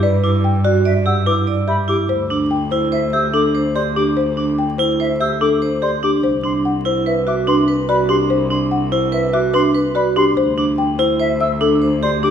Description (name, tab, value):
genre	classical, minimalist pattern music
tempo	145 BPM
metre	5/4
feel	straight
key	D mixolydian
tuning	A4 = 440 Hz
part	folk marimba with soft mallets	melody	0.0-12.3 s	G4 to G5	-20 LUFS	left 5 dB	none
part	vibraphone with hard mallets	arpeggios	0.0-12.3 s	D4 to D5	-18 LUFS	right 3 dB	none
part	rich cello	bass	0.0-12.3 s	C2 to G2	-21 LUFS	equal	none
part	silver concert flute	arpeggios	0.2-12.3 s	E5 to E6	-24 LUFS	left 2 dB	none
room	moderate scoring stage reverb, RT60 1.6 s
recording	minimal, uncompressed stereo recording, vinyl crackle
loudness	-14 LUFS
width	side -8 dB against mid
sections	0.0-12.3 A section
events	none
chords	0.0 Gmaj7; 2.1 D7sus4; 6.2 Cmaj9; 10.4 D7sus4